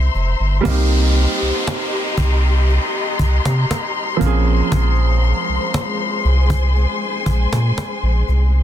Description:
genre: contemporary R&B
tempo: 59 BPM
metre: 4/4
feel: straight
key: unclear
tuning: A4 = 440 Hz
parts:
  - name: clear concert grand piano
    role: accompaniment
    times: 0.0-8.6 s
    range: F3 to Ab4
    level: -24 LUFS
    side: right 5 dB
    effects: none
  - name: warm studio string section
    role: sustained chords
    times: 0.0-8.6 s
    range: Ab3 to C6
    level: -22 LUFS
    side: left 4 dB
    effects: none
  - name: warm sub bass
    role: bass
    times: 0.0-8.6 s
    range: F1 to C3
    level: -15 LUFS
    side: equal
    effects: none
  - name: cajon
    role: drums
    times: 0.1-8.4 s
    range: none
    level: -22 LUFS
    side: equal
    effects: none
  - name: downlifter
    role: sound effects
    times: 0.7-8.6 s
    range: none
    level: -28 LUFS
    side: equal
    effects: none
room: studio reverb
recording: dense, heavily limited modern master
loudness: -15 LUFS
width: side -11 dB against mid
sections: 0.7-8.6 A section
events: break 0.0-0.7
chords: 0.0 C7b9; 0.7 Cm7; 4.2 Bbm9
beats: | 0.65 1.67 2.69 3.70 | 4.72 5.74 6.75 7.77

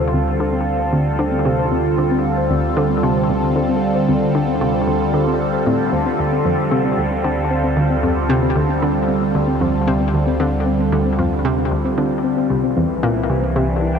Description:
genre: ambient, sequencer-driven space music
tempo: 114 BPM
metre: 4/4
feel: straight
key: D minor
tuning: A4 = 440 Hz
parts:
  - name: phased analog pad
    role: sustained chords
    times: 0.0-14.0 s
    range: D3 to A4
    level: -19 LUFS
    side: right 1 dB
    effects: phaser, chorus
  - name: soft round pluck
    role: arpeggios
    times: 0.0-14.0 s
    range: C4 to G5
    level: -23 LUFS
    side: moving between left 8 dB and right 2 dB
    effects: chorus, auto-pan, ping-pong delay
  - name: analog pluck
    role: riff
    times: 0.0-13.7 s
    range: C2 to D3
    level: -21 LUFS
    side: equal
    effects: chorus, ping-pong delay
  - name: analog drone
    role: bass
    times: 0.0-14.0 s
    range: C2 to D2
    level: -25 LUFS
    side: equal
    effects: chorus
room: wet huge ambient reverb, RT60 9.0 s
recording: dark, warm production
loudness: -15 LUFS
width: side -6 dB against mid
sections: 0.0-14.0 A section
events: none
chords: 0.0 Dm7; 12.5 C7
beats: 0.40 0.93 1.45 | 1.98 2.50 3.03 3.56 | 4.08 4.61 5.14 5.66 | 6.19 6.72 7.24 7.77 | 8.29 8.82 9.35 9.87 | 10.40 10.93 11.45 11.98 | 12.51 13.03 13.56

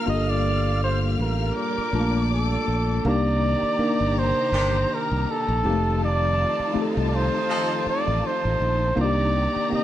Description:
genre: soul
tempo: 81 BPM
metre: 4/4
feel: swing 58% on 16ths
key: C dorian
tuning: A4 = 440 Hz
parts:
  - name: warm flugelhorn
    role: melody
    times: 0.0-9.8 s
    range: A4 to Eb5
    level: -25 LUFS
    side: right 1 dB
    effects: slapback echo
  - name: warm studio string section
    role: second line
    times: 0.0-9.8 s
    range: Eb4 to F6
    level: -32 LUFS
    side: left 1 dB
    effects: none
  - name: tine electric piano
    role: accompaniment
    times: 0.0-9.8 s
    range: Ab3 to A5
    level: -26 LUFS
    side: left 2 dB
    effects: medium stereo tremolo
  - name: string machine, full ensemble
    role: sustained chords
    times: 0.0-9.8 s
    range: C3 to D5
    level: -34 LUFS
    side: right 1 dB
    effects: ensemble chorus
  - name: fingered electric bass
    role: bass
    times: 0.1-9.8 s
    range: F1 to C2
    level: -24 LUFS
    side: equal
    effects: none
  - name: warm horn section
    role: stabs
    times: 4.5-7.7 s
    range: Eb3 to A4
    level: -28 LUFS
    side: left 1 dB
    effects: slapback echo
room: light reverb, small room ambience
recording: none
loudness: -20 LUFS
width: side -12 dB against mid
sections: 0.0-3.0 A section; 3.0-9.8 B section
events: none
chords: 0.0 Gm9; 3.0 Cm9; 5.6 F7; 9.0 Cm9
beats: | 0.08 0.82 1.56 2.31 | 3.05 3.79 4.53 5.27 | 6.01 6.75 7.49 8.23 | 8.98 9.72

